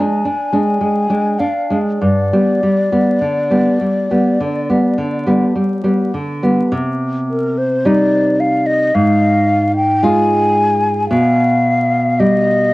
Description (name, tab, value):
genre	romantic duo for flute and classical guitar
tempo	48-56 BPM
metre	4/4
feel	rubato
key	C minor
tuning	A4 = 436 Hz
part	mellow hollow concert flute	melody	0.0-12.7 s	Bb4 to Ab5	-16 LUFS	left 1 dB	cassette tape, analog delay
part	nylon-string guitar	accompaniment	0.0-12.7 s	G2 to F4	-14 LUFS	equal	cassette tape
room	light reverb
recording	home recording on cassette, vinyl crackle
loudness	-12 LUFS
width	side -19 dB against mid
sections	0.0-6.7 A section; 6.7-12.7 B section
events	none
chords	0.0 D(b5, no3); 2.0 G; 6.7 Cm; 9.0 Fm/Ab; 11.1 G7/B